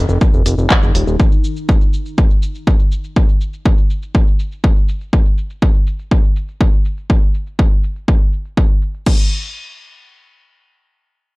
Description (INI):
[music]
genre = melodic techno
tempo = 122 BPM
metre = 4/4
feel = straight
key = Eb minor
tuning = A4 = 440 Hz
[part]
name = fat analog bass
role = bass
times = 0.0-1.2 s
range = Eb1 to Gb1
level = -15 LUFS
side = equal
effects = transformer saturation, sidechain pumping
[part]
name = overtone-sweeping drone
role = drone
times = 0.0-1.2 s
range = Eb3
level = -29 LUFS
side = left 3 dB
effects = chorus, built-in reverb, sidechain pumping
[part]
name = techno drum kit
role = drums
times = 0.1-9.2 s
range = crash cymbal, handclaps, hi-hat, shaker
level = -21 LUFS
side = equal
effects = low-pass filter on perc, low-pass filter on snare, low-pass filter on hats, low-pass filter on cymbals, low-pass filter on room
[part]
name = electronic kick drum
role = drums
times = 0.2-9.2 s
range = none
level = -12 LUFS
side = equal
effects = none
[sound]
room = little or no reverb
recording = dry, gritty hardware recording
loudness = -13 LUFS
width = side -24 dB against mid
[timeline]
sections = 0.0-9.1 A section; 9.1-11.4 B section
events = filter sweep on drum 0.0-9.1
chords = 0.0 Ebmadd9; 1.2 N.C.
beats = 0.21 0.70 | 1.20 1.69 2.18 2.67 | 3.16 3.65 4.15 4.64 | 5.13 5.62 6.11 6.61 | 7.10 7.59 8.08 8.57 | 9.06